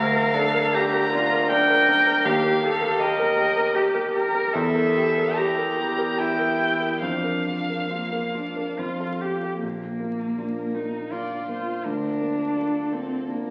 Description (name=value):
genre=classical, slow romantic movement for piano trio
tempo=67-85 BPM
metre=3/4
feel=rubato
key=Bb major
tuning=A4 = 439 Hz
part: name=rich violin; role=melody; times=0.0-13.5 s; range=A4 to Bb5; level=-28 LUFS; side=equal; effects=none
part: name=dark cello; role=second line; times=0.0-13.5 s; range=Bb3 to Bb4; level=-28 LUFS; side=equal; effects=none
part: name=dark concert grand piano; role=accompaniment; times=0.0-13.5 s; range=Bb1 to Bb4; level=-28 LUFS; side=equal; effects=none
room=wet recital hall reverb, RT60 1.6 s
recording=very old 78 rpm record, vinyl crackle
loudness=-23 LUFS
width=mono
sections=0.0-9.6 A section; 9.6-13.5 B section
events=none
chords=0.0 Bb/D; 2.2 Eb; 4.5 Edim; 7.0 Bb/F; 8.8 F; 9.6 Bb; 11.9 Bb/D